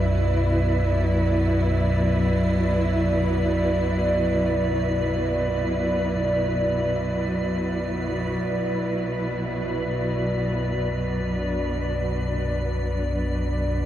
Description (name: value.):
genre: dark ambient drone.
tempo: free time.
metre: none.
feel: none.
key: B minor.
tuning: A4 = 440 Hz.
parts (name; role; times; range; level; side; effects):
rich studio cello section; sustained chords; 0.0-13.9 s; B2 to B4; -24 LUFS; equal; none.
deep rumbling drone; drone; 0.0-13.9 s; B1 to F#2; -26 LUFS; equal; built-in reverb, wide subtle chorus.
icy glass pad; texture; 0.0-13.9 s; D5; -28 LUFS; right 1 dB; chorus, built-in reverb.
room: wet huge ambient reverb, RT60 9.0 s.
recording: worn, warbling old tape, cassette tape, warbly pitch drift.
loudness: -21 LUFS.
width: side -11 dB against mid.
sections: 0.0-8.4 A section; 8.4-13.9 B section.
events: none.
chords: 0.0 Bm.